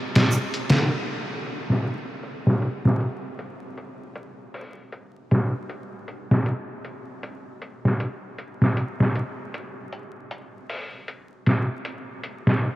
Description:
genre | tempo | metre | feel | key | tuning
trip hop | 78 BPM | 4/4 | swing 59% on 16ths | none | none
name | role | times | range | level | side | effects
trip hop sampler-style drum kit | drums | 0.2-12.6 s | hi-hat, snare drum | -23 LUFS | equal | low-pass filter on hats, low-pass filter on snare, low-pass filter on kick
tube shaker | percussion | 0.3-0.5 s | none | -41 LUFS | right 5 dB | none
room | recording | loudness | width
moderate huge ambient reverb, RT60 9.1 s | dreamy mix soaked in reverb, vinyl crackle | -22 LUFS | side -16 dB against mid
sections
0.0-1.1 A section; 1.1-12.8 B section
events
break 0.0-1.1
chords
none

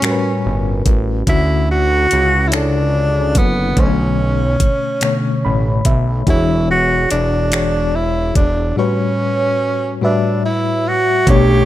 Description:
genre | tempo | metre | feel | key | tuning
slow six-eight R&B | 48 BPM (dotted quarters) | 6/8 | straight | unclear | A4 = 440 Hz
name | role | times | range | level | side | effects
breathy tenor saxophone | melody | 0.0-11.7 s | B3 to G4 | -18 LUFS | right 1 dB | slapback echo
FM electric piano with auto-pan | accompaniment | 0.0-11.7 s | A2 to B5 | -19 LUFS | left 2 dB | none
smooth R&B drum kit | drums | 0.0-11.5 s | finger snaps, hi-hat, kick drum | -16 LUFS | equal | none
fat analog bass | bass | 0.5-11.7 s | E1 to D2 | -17 LUFS | equal | none
mellow horn section | stabs | 11.3-11.7 s | A3 to C#5 | -23 LUFS | right 9 dB | none
room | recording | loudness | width
light reverb | none | -13 LUFS | side -14 dB against mid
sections
0.0-11.3 A section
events
FM electric piano fill 5.0-6.3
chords
0.0 A13; 1.3 Dmaj9; 3.8 Bm9; 6.3 E13; 8.8 A13

